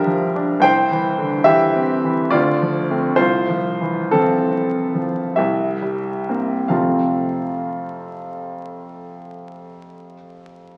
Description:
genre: classical, romantic character piece for solo piano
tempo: 43-75 BPM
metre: 3/4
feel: rubato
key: F major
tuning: A4 = 440 Hz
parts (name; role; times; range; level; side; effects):
- clear grand piano; solo; 0.0-10.8 s; Bb1 to G5; -20 LUFS; equal; none
room: wet recital hall reverb, RT60 1.7 s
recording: very old 78 rpm record, vinyl crackle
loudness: -19 LUFS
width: mono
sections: 0.0-6.7 A section; 6.7-10.3 B section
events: slowing down 0.0-6.7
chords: 0.0 Gm7/Bb; 0.6 C; 2.3 Dm7; 3.2 F/C; 5.4 C7; 6.7 F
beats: | 0.63 1.46 2.32 | 3.18 4.13 5.37 | 6.70 7.92 9.11

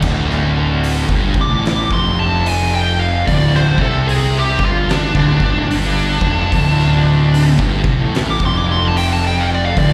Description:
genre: stoner and doom metal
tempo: 74 BPM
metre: 4/4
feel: swing 62% on 8ths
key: D minor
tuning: A4 = 440 Hz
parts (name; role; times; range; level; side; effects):
- thick fuzz guitar; riff; 0.0-9.9 s; D2 to C3; -20 LUFS; equal; distortion
- fuzz fingered electric bass; bass; 0.0-9.9 s; D1 to C2; -20 LUFS; equal; overdrive
- oversized low-tuned drum kit; drums; 0.0-9.9 s; crash cymbal, hi-hat, kick drum, snare drum; -23 LUFS; equal; none
- fuzz lead guitar; melody; 1.4-9.9 s; D4 to D6; -21 LUFS; equal; wah, distortion, slapback echo, digital delay
room: little or no reverb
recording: live gig heard through the venue's PA, recital hall reverb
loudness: -15 LUFS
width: mono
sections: 0.0-9.9 A section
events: lead electric guitar solo 0.0-9.9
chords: 0.0 Dm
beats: | 0.03 0.84 1.65 2.46 | 3.28 4.09 4.90 5.71 | 6.52 7.33 8.15 8.96 | 9.77

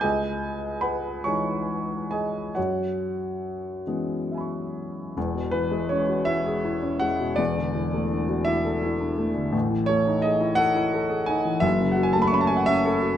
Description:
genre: classical, impressionist solo piano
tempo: 44-60 BPM (dotted quarters)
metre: 6/8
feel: rubato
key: E major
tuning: A4 = 445 Hz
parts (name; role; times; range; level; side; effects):
- warm baby grand piano; solo; 0.0-13.2 s; E1 to C#6; -22 LUFS; equal; none
room: moderate recital hall reverb, RT60 1.4 s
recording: close, detailed microphones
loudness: -22 LUFS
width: side -10 dB against mid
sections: 0.0-5.2 A section; 5.2-13.2 B section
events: none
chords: 0.0 C#madd9; 2.6 F#9sus4; 5.2 E69; 7.4 Dadd9/E; 9.5 A5; 11.6 F#m7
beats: | 0.04 1.27 | 2.56 3.86 | 5.16 6.28 | 7.39 8.48 | 9.54 10.59 | 11.63 12.68

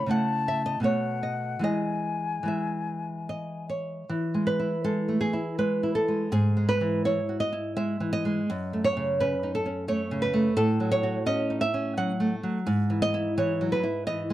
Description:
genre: romantic duo for flute and classical guitar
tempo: 71-88 BPM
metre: 3/4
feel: rubato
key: E major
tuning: A4 = 440 Hz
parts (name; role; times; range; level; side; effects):
- concert flute; melody; 0.0-3.7 s; F#5 to B5; -31 LUFS; left 5 dB; none
- nylon-string guitar; accompaniment; 0.0-14.3 s; F#2 to F#5; -25 LUFS; right 1 dB; none
room: little or no reverb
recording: dry, close 1970s-style studio recording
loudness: -24 LUFS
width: side -14 dB against mid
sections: 0.0-4.1 A section; 4.1-14.3 B section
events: none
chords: 0.0 A/C#; 0.8 B7; 1.6 E; 6.3 E/G#; 8.5 F#m; 10.6 F#m/A; 12.7 E/G#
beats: 0.10 0.84 | 1.64 2.48 3.29 | 4.09 4.84 5.58 | 6.32 7.04 7.76 | 8.49 9.19 9.88 | 10.57 11.27 11.97 | 12.66 13.36 14.06

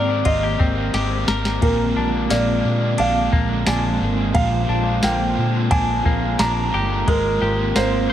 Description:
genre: dream pop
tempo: 88 BPM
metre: 4/4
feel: straight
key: unclear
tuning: A4 = 439 Hz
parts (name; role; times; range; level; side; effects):
- felt-muted upright piano; melody; 0.0-8.1 s; Bb4 to Bb5; -23 LUFS; right 2 dB; tape echo, slapback echo
- overdriven electric guitar; accompaniment; 0.0-8.1 s; Bb2 to C5; -26 LUFS; right 1 dB; harmonic tremolo, wide subtle chorus
- warbly tape-like pad; sustained chords; 0.0-8.1 s; D3 to G5; -26 LUFS; right 2 dB; chorus, built-in reverb, tremolo
- semi-hollow electric guitar; arpeggios; 0.0-8.1 s; Bb2 to C5; -25 LUFS; left 3 dB; wide subtle chorus, tape echo, slapback echo
- vintage muted fingered electric bass; bass; 0.0-8.1 s; G1 to Bb2; -23 LUFS; equal; none
- drifting glass-harmonics texture; texture; 0.0-8.1 s; F4 to C5; -37 LUFS; left 1 dB; none
- soft vintage rhythm box; drums; 0.3-7.9 s; kick drum, ride cymbal, snare drum, tambourine; -22 LUFS; equal; none
room: wet lush hall reverb, RT60 1.9 s, digital ambience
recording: big arena sound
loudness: -17 LUFS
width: side -11 dB against mid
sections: 0.0-8.1 A section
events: drum fill 0.9-1.6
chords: 0.0 Abmaj9; 1.6 Bb13; 7.1 Abmaj9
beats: 0.26 0.94 | 1.62 2.31 2.99 3.67 | 4.35 5.03 5.71 6.40 | 7.08 7.76

